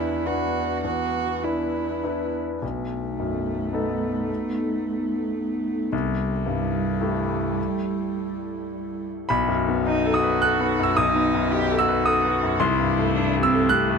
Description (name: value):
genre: neoclassical piano and strings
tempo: 100-113 BPM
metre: 3/4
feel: rubato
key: unclear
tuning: A4 = 439 Hz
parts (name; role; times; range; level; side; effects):
- dark cello; second line; 0.0-14.0 s; G3 to G4; -28 LUFS; right 7 dB; none
- bright concert grand piano; accompaniment; 0.0-14.0 s; B1 to F#6; -23 LUFS; left 2 dB; none
- warbly tape-like pad; sustained chords; 0.0-14.0 s; F#3 to B4; -32 LUFS; left 1 dB; chorus, built-in reverb
room: moderate studio reverb, RT60 0.6 s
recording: none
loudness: -21 LUFS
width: side -5 dB against mid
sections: 0.0-2.6 A section; 2.6-9.3 B section; 9.3-14.0 C section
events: none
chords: 0.0 E7(no3); 2.6 B7; 5.9 Am7/C; 9.3 B7; 12.6 Am7/C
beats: 0.25 | 0.84 1.44 2.03 | 2.62 3.19 3.73 | 4.29 4.84 5.38 | 5.92 6.47 7.01 | 7.57 8.15 8.73 | 9.31 9.87 10.42 | 10.97 11.52 12.06 | 12.60 13.15 13.69